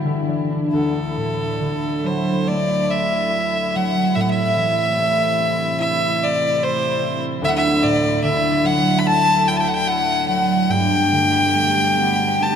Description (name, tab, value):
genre	celtic folk, Celtic slow air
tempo	72 BPM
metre	4/4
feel	uneven beats, rubato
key	unclear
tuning	A4 = 445 Hz
part	concert harp	accompaniment	0.0-12.6 s	D2 to G5	-21 LUFS	right 1 dB	none
part	warm studio string section	sustained chords	0.0-12.6 s	B2 to G4	-27 LUFS	equal	none
part	clear fiddle	melody	0.7-12.6 s	A4 to B5	-19 LUFS	left 1 dB	none
room	wet cathedral reverb, RT60 5.1 s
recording	lossy compression artefacts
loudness	-16 LUFS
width	side -8 dB against mid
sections	0.7-12.6 A section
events	harp fill 0.0-0.7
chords	0.0 G6; 0.7 Dadd9; 4.2 Am; 7.4 Dadd9; 10.7 Gadd9